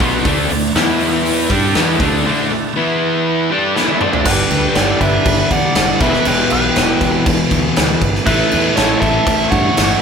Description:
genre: hard rock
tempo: 120 BPM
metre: 4/4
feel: straight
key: unclear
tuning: A4 = 437 Hz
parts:
  - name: overdriven tonewheel organ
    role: sustained chords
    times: 0.0-10.0 s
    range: E3 to B5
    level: -27 LUFS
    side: equal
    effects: none
  - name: distorted electric guitar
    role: riff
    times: 0.0-10.0 s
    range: E2 to G4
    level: -20 LUFS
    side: left 1 dB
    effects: distortion
  - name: scooped high-gain guitar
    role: riff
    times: 0.0-4.3 s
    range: B2 to G4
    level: -22 LUFS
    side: right 8 dB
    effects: distortion
  - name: sludgy distorted guitar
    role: riff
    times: 0.0-10.0 s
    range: E2 to G4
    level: -20 LUFS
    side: left 6 dB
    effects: overdrive
  - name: growling fingered electric bass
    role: bass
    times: 0.0-9.9 s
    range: E1 to G2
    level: -21 LUFS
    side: right 1 dB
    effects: overdrive
  - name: big rock drum kit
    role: drums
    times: 0.0-9.9 s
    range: crash cymbal, hi-hat, kick drum, snare drum, toms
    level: -17 LUFS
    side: right 1 dB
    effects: none
  - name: nasal lead guitar with a parked wah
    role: melody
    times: 4.3-10.0 s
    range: B4 to F#5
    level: -19 LUFS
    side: right 2 dB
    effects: overdrive
  - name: octave-fuzz lead guitar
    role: second line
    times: 4.3-10.0 s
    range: E4 to D5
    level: -22 LUFS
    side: right 4 dB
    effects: distortion
room: moderate large studio reverb, RT60 0.8 s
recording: band playing live in one room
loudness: -12 LUFS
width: side -6 dB against mid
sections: 0.0-4.3 A section; 4.3-10.0 B section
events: drum fill 3.8-4.3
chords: 0.3 D5; 0.8 E5; 1.5 D5; 2.8 E5; 3.5 D5; 4.3 G; 6.0 Em; 8.3 A

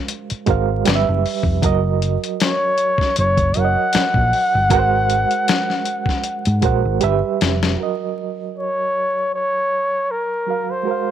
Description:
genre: R&B, neo-soul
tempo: 78 BPM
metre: 4/4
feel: swing 54% on 16ths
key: Gb lydian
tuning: A4 = 440 Hz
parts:
  - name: bright reed electric piano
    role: accompaniment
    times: 0.0-11.1 s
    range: Gb3 to Gb5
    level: -22 LUFS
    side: right 11 dB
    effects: fast tremolo
  - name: dusty soul sampler-style drum kit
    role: drums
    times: 0.1-7.8 s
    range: hi-hat, kick drum, snare drum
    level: -20 LUFS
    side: left 3 dB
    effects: none
  - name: hollow-body short-scale fingered electric bass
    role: bass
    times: 0.3-7.7 s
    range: F1 to Ab2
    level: -19 LUFS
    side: equal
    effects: none
  - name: breathy flugelhorn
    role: melody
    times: 2.4-11.1 s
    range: Bb4 to Gb5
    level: -18 LUFS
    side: left 1 dB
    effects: none
room: little or no reverb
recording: 1960s-style stereo, vinyl crackle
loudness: -16 LUFS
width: side -10 dB against mid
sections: 0.0-7.8 A section; 7.8-11.1 B section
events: drum fill 7.0-7.8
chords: 0.0 Ab13; 0.9 G6; 1.6 Gb6; 4.7 Ab9; 7.0 G6; 7.8 Gb6

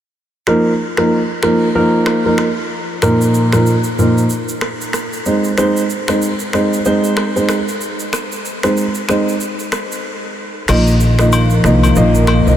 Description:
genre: afrobeats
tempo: 94 BPM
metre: 4/4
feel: swing 58% on 16ths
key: unclear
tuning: A4 = 436 Hz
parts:
  - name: dark baby grand piano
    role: accompaniment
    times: 0.5-12.6 s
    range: Bb2 to Eb5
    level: -14 LUFS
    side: right 1 dB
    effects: none
  - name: afro-pop drum kit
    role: drums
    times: 0.5-12.6 s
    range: crash cymbal, finger snaps, rim click, shaker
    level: -21 LUFS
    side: equal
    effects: none
  - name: lush unison pad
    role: sustained chords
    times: 11.1-12.6 s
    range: Eb3 to Bb3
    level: -17 LUFS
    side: left 2 dB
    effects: chorus
  - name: upright bass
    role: bass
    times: 10.7-12.6 s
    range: Bb1 to C2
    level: -12 LUFS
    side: equal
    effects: none
  - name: agogo bells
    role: percussion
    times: 10.7-12.5 s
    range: none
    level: -22 LUFS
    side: left 6 dB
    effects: none
room: moderate huge ambient reverb, RT60 7.3 s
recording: dreamy mix soaked in reverb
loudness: -12 LUFS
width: side -10 dB against mid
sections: 0.5-10.7 A section; 10.7-12.6 B section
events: break 10.0-10.7; kick muted 10.7-12.6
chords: 0.5 Bbsus4; 3.0 Ebsus2/Bb; 5.3 Ab; 10.7 Bbsus4

